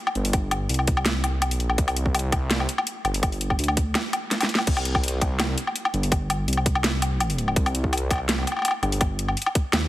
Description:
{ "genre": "half-time drum and bass", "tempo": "166 BPM", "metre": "4/4", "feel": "half-time", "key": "C minor", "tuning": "A4 = 440 Hz", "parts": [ { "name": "drum and bass drum kit", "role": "drums", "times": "0.1-9.8 s", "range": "crash cymbal, hi-hat, snare drum, woodblock", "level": "-24 LUFS", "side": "left 1 dB", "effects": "overdrive, studio reverb" }, { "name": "dark detuned saw bass", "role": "bass", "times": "0.2-9.9 s", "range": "G1 to Eb2", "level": "-25 LUFS", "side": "equal", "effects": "none" }, { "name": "electronic kick drum", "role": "drums", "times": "0.3-9.6 s", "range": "none", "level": "-23 LUFS", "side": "equal", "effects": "overdrive, studio reverb" } ], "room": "light reverb", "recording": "heavily compressed radio sound", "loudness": "-21 LUFS", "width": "side -16 dB against mid", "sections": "0.0-9.9 A section", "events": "drum fill 4.3-4.7", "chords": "none", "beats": "| 0.34 0.70 1.06 1.42 | 1.78 2.14 2.50 2.87 | 3.23 3.59 3.95 4.31 | 4.67 5.03 5.39 5.76 | 6.12 6.48 6.84 7.20 | 7.56 7.92 8.29 8.65 | 9.01 9.37 9.73" }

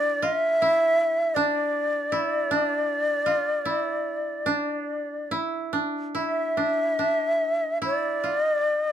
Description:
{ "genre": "japanese traditional, Japanese chamber music", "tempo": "69-81 BPM", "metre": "4/4", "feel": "rubato", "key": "D hirajoshi", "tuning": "A4 = 439 Hz", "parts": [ { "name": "breathy bright long shakuhachi", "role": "melody", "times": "0.0-8.9 s", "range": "D5 to E5", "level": "-23 LUFS", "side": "left 1 dB", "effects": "none" }, { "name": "koto", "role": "second line", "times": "0.0-8.9 s", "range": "D4 to F4", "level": "-28 LUFS", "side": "right 3 dB", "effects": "none" } ], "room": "light reverb", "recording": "dark, warm production", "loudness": "-22 LUFS", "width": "side -10 dB against mid", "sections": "0.0-6.2 A section; 6.2-8.9 B section", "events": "none", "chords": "none", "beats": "0.62 1.37 2.13 | 2.90 3.68 4.48 5.32 | 6.17 7.00 7.83 8.65" }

